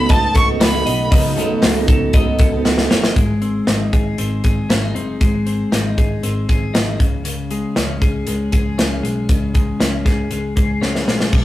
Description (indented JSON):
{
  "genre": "jangly indie pop",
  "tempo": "118 BPM",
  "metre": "4/4",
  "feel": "straight",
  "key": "unclear",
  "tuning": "A4 = 442 Hz",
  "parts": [
    { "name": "warm violin", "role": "melody", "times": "0.0-1.1 s", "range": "A5 to C#6", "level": "-19 LUFS", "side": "right 1 dB", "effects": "none" },
    { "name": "picked steel-string acoustic guitar", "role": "accompaniment", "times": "0.0-3.2 s", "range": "C#3 to A4", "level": "-22 LUFS", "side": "right 6 dB", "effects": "none" },
    { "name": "ensemble organ-string", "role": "sustained chords", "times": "0.0-3.1 s", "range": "D#3 to F#4", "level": "-26 LUFS", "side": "right 1 dB", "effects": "none" },
    { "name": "twelve-string electric guitar", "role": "arpeggios", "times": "0.0-11.4 s", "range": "B2 to D#5", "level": "-22 LUFS", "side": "left 2 dB", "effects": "none" },
    { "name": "vintage muted picked electric bass", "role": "bass", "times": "0.0-11.4 s", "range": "F#1 to C#2", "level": "-24 LUFS", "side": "equal", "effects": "none" },
    { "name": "modern studio drum kit", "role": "drums", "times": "0.1-11.4 s", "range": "hi-hat, kick drum, snare drum, splash cymbal", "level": "-16 LUFS", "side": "equal", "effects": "none" },
    { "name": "group handclap", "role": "percussion", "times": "0.6-2.8 s", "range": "none", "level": "-33 LUFS", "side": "right 2 dB", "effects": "none" }
  ],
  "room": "moderate studio reverb, RT60 0.6 s",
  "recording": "rough rehearsal-room recording, warm saturation",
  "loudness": "-14 LUFS",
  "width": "side -15 dB against mid",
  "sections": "0.0-3.2 A section; 3.2-11.4 B section",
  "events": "drum fill 2.7-3.2, 10.8-11.3",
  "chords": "0.0 B7; 3.2 G#; 7.0 C#5"
}